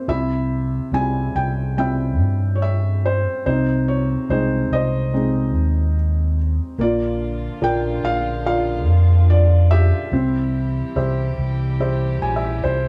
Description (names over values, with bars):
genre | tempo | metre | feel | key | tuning
acoustic folk-pop ballad | 72 BPM | 4/4 | straight | unclear | A4 = 440 Hz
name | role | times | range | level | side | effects
felt-muted upright piano | melody | 0.0-12.9 s | C3 to Ab5 | -24 LUFS | equal | none
fingered electric bass | bass | 0.1-12.9 s | Bb1 to G2 | -21 LUFS | equal | none
warm chamber string section | sustained chords | 6.8-12.9 s | Bb2 to G4 | -34 LUFS | equal | none
room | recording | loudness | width
wet studio reverb, RT60 0.6 s | heard from further back in the room | -20 LUFS | mono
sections
0.1-12.9 A section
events
felt piano fill 11.8-12.9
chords
0.1 C; 3.5 Ab/C; 6.8 Bb; 10.1 C